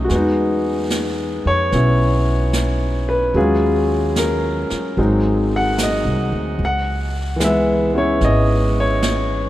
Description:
jazz ballad; 74 BPM; 4/4; swing 67% on 8ths; E major; A4 = 439 Hz
clear baby grand piano; accompaniment; 0.0-9.5 s; E3 to F#5; -18 LUFS; left 1 dB
upright bass; bass; 0.0-9.5 s; G#1 to F2; -20 LUFS; equal
vintage brush drum kit; drums; 0.1-9.5 s; brushed snare drum, hi-hat, snare drum; -28 LUFS; right 1 dB
wet cathedral reverb, RT60 5.5 s; in a vast, echoing space; -16 LUFS; side -14 dB against mid
0.1-9.5 A section
0.1 Emaj9; 3.4 D#m11; 5.0 G#7; 6.6 C#m7
| 0.10 0.91 1.73 2.54 | 3.36 4.17 4.98 5.79 | 6.60 7.41 8.22 9.03

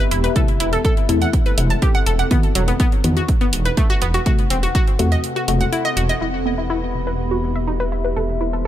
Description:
melodic techno; 123 BPM; 4/4; straight; E harmonic minor; A4 = 440 Hz
analog pluck; arpeggios; 0.0-8.7 s; F#3 to A5; -23 LUFS; equal; chorus, sidechain pumping, ping-pong delay
filtered dub chord stab; stabs; 0.0-8.7 s; B2 to F#4; -25 LUFS; left 3 dB; chorus, sidechain pumping, ping-pong delay
electronic hi-hat; drums; 0.0-6.2 s; -27 LUFS; right 3 dB; low-pass filter on hats, low-pass filter on room
deep dark ambient pad; texture; 0.0-8.7 s; B3 to C6; -26 LUFS; left 2 dB; chorus, built-in reverb, sidechain pumping
dark detuned saw bass; bass; 0.1-8.7 s; E1 to E2; -21 LUFS; equal; sidechain pumping
electronic kick drum; drums; 0.4-4.8 s; -17 LUFS; equal
dark analog pad; sustained chords; 6.2-8.7 s; G4 to C6; -31 LUFS; right 1 dB; wide subtle chorus, sidechain pumping
digital ambience; -16 LUFS; side -12 dB against mid
0.0-6.2 A section; 6.2-8.7 B section
filter sweep on synth stab 0.0-6.2; kick drops out 5.2-6.2; filter sweep on synth arpeggio sound 6.2-8.7
0.4 Am/E; 2.3 B/E; 4.3 F#dim/E; 6.2 Em; 8.2 Am/E
| 0.36 0.85 1.33 1.82 | 2.31 2.80 3.29 3.77 | 4.26 4.75 5.24 5.72 | 6.21 6.70 7.19 7.68 | 8.16 8.65

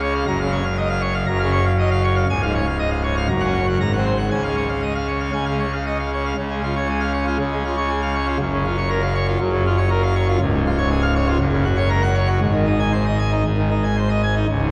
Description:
classical, organ toccata; 118 BPM; 4/4; straight; Db major; A4 = 440 Hz
pipe organ, full organ; solo; 0.0-14.7 s; Db1 to Bb5; -20 LUFS; equal
wet church reverb, RT60 2.8 s; worn, warbling old tape, cassette tape, warbly pitch drift; -20 LUFS; mono
0.0-6.4 A section; 6.4-14.7 A section
0.3 Gbmaj7; 2.3 Db; 3.3 Gb; 3.8 Ab9; 4.3 Db; 8.4 Gbmaj7; 10.4 Db; 11.4 Gb; 12.4 Ab
| 0.27 0.77 1.28 1.78 | 2.28 2.78 3.29 3.79 | 4.30 4.82 5.33 5.85 | 6.36 6.88 7.38 7.89 | 8.40 8.90 9.40 9.90 | 10.40 10.90 11.40 11.91 | 12.43 12.94 13.46 13.97 | 14.48

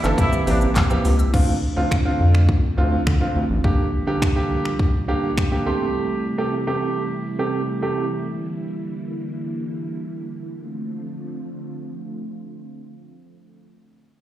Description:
dance-pop; 104 BPM; 4/4; straight; D minor; A4 = 441 Hz
clear grand piano; accompaniment; 0.0-8.0 s; C3 to C6; -23 LUFS; right 2 dB; low-pass filter, plate reverb, slapback echo
string machine, violas; sustained chords; 0.0-13.6 s; C3 to F4; -30 LUFS; equal; ensemble chorus, sidechain pumping, low-pass filter, plate reverb
mallet-like synth pluck; arpeggios; 0.0-1.3 s; C3 to E6; -35 LUFS; right 2 dB
round analog bass; bass; 0.0-3.6 s; G1 to D3; -18 LUFS; equal; sidechain pumping
pop drum kit; drums; 0.0-5.5 s; crash cymbal, finger snaps, handclaps, hi-hat, kick drum, shaker, snare drum; -20 LUFS; equal
warm horn section; melody; 0.2-0.6 s; D4 to E4; -27 LUFS; left 1 dB; sidechain pumping, plate reverb, slapback echo, digital delay
light reverb; live gig heard through the venue's PA, recital hall reverb; -19 LUFS; side -13 dB against mid
0.0-1.3 A section; 1.3-10.6 B section; 10.6-12.9 C section
drop 0.0-1.3; filter sweep 1.3-10.6; grand piano fill 4.8-6.0
0.2 C7; 1.3 Dm7; 3.6 Bb6; 5.7 Am7; 8.3 Em7b5; 10.6 Dm7
0.18 0.76 | 1.34 1.91 2.49 3.07 | 3.64 4.22 4.80 5.37 | 5.95 6.53 7.11 7.68 | 8.26 8.84 9.41 9.99 | 10.57 11.14 11.72 12.30

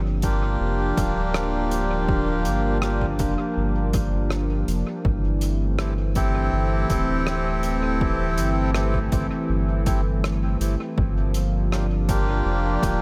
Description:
ambient dub; 81 BPM; 4/4; straight; G dorian; A4 = 440 Hz
warm analog pad; sustained chords; 0.0-13.0 s; E3 to G4; -30 LUFS; equal; chorus
soft dub sub bass; bass; 0.0-13.0 s; D1 to G1; -26 LUFS; equal
melodica; stabs; 0.2-13.0 s; Bb3 to A4; -30 LUFS; equal; vintage 12-bit sampler grit, dub echo
electronic kick drum; drums; 0.2-13.0 s; -28 LUFS; equal; overdrive
soft-mallet drum kit; drums; 0.2-13.0 s; hi-hat, rim click; -37 LUFS; equal; dub echo
light reverb, small room ambience; -23 LUFS; mono
0.0-13.0 A section
0.0 Gm7; 5.0 Am7; 11.0 Gm7
0.60 1.34 | 2.08 2.83 3.57 4.31 | 5.05 5.79 6.53 7.27 | 8.01 8.75 9.49 10.23 | 10.97 11.71 12.46

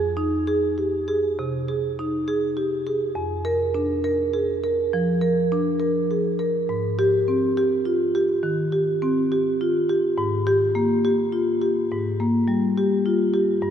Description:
classical, contemporary piece for solo marimba; 68 BPM; 4/4; rubato; A4 = 441 Hz
marimba with medium mallets; solo; 0.0-13.7 s; F2 to Bb4; -20 LUFS; equal
wet cathedral reverb, RT60 5.5 s; minimal, uncompressed stereo recording; -20 LUFS; side -8 dB against mid
0.0-13.7 A section
0.0 Fm7; 3.1 Bb/F; 6.7 Abmaj7; 10.2 Bb5/Ab
0.47 1.37 2.26 | 3.14 4.03 4.92 5.81 | 6.70 7.58 8.44 9.31 | 10.17 11.04 11.90 12.76 | 13.62

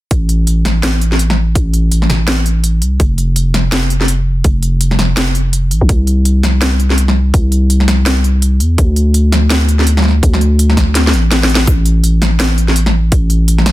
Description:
half-time drum and bass; 166 BPM; 4/4; swing 58% on 16ths, half-time; A4 = 440 Hz
growling 808-style bass; bass; 0.1-13.7 s; F1 to E2; -11 LUFS; equal
drum and bass drum kit; drums; 0.1-13.7 s; hi-hat, snare drum; -15 LUFS; equal
electronic kick drum; drums; 0.1-13.2 s; -12 LUFS; equal
little or no reverb; dense, heavily limited modern master; -10 LUFS; side -16 dB against mid
0.1-13.7 A section
drum fill 11.0-11.7
| 0.11 0.47 0.83 1.19 | 1.55 1.92 2.28 2.64 | 3.00 3.36 3.72 4.08 | 4.45 4.81 5.17 5.53 | 5.89 6.25 6.62 6.98 | 7.34 7.70 8.06 8.42 | 8.78 9.14 9.51 9.87 | 10.23 10.59 10.95 11.31 | 11.68 12.04 12.40 12.76 | 13.12 13.48

